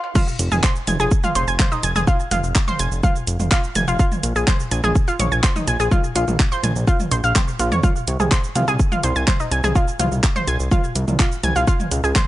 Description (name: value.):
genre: melodic techno.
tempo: 125 BPM.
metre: 4/4.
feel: straight.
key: F minor.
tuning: A4 = 440 Hz.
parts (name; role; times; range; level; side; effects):
house drum kit; drums; 0.0-12.3 s; crash cymbal, handclaps, hi-hat, shaker, toms; -24 LUFS; right 1 dB; sidechain pumping on perc, high-pass filter on perc, sidechain pumping on hats, high-pass filter on hats, high-pass filter on snare, sidechain pumping on toms, high-pass filter on toms, sidechain pumping on cymbals, high-pass filter on cymbals, high-pass filter on room.
analog pluck; arpeggios; 0.2-12.2 s; C4 to Ab6; -22 LUFS; equal; chorus, sidechain pumping, analog delay.
electronic kick drum; drums; 0.2-12.3 s; none; -18 LUFS; equal; none.
fat analog bass; bass; 0.4-12.1 s; F1 to F2; -21 LUFS; equal; sidechain pumping.
room: little or no reverb.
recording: dry, gritty hardware recording, high-pass filter, nothing above 10.6 kHz.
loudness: -16 LUFS.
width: side -15 dB against mid.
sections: 0.2-12.3 A section.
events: break 0.0; drum fill 0.0; drop 0.2-12.3.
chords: 0.2 Fm; 4.0 Bbm; 7.8 Fm/C; 11.7 Db5.